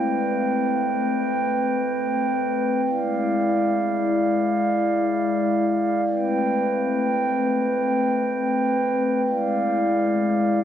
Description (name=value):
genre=hip hop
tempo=free time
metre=none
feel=none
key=A minor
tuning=A4 = 441 Hz
part: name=glass harmonica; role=solo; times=0.0-10.6 s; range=G#3 to G5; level=-20 LUFS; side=equal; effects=none
room=light reverb, studio reverb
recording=worn, warbling old tape, cassette tape, warbly pitch drift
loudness=-20 LUFS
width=side -10 dB against mid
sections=0.0-10.6 A section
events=none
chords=0.0 Am9; 2.8 E7b9; 6.0 Am9; 9.2 E7b9